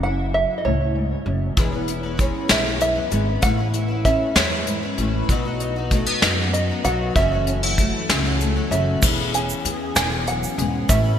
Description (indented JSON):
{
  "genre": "indie folk with a building arrangement",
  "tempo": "64 BPM (dotted quarters)",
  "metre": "6/8",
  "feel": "straight",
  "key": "E major",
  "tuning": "A4 = 436 Hz",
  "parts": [
    { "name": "open-back banjo", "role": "melody", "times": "0.0-11.2 s", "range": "C#5 to G#5", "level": "-25 LUFS", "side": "right 2 dB", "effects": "digital delay" },
    { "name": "fingerpicked steel-string acoustic guitar", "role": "accompaniment", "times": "0.0-11.2 s", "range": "E2 to G#4", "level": "-26 LUFS", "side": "left 1 dB", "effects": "analog chorus" },
    { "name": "upright bass", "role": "bass", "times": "0.0-11.2 s", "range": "E1 to F#2", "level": "-24 LUFS", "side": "equal", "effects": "none" },
    { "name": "picked twelve-string acoustic guitar", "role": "accompaniment", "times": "1.6-11.2 s", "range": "F#2 to B4", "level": "-29 LUFS", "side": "left 5 dB", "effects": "analog chorus" },
    { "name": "soft brush drum kit", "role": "drums", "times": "1.6-11.0 s", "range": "crash cymbal, hi-hat, kick drum, snare drum", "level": "-22 LUFS", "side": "equal", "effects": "gated reverb" },
    { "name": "egg shaker", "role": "percussion", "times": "9.0-11.0 s", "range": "none", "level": "-31 LUFS", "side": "right 7 dB", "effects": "none" }
  ],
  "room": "moderate lush hall reverb, RT60 3.3 s",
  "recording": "bright 1980s-style digital production",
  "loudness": "-18 LUFS",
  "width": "side -9 dB against mid",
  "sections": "0.0-9.0 A section; 9.0-11.2 B section",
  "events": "none",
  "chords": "0.0 F#m7; 1.6 E6; 3.4 Aadd9; 5.3 B; 7.2 F#m7; 9.0 E6"
}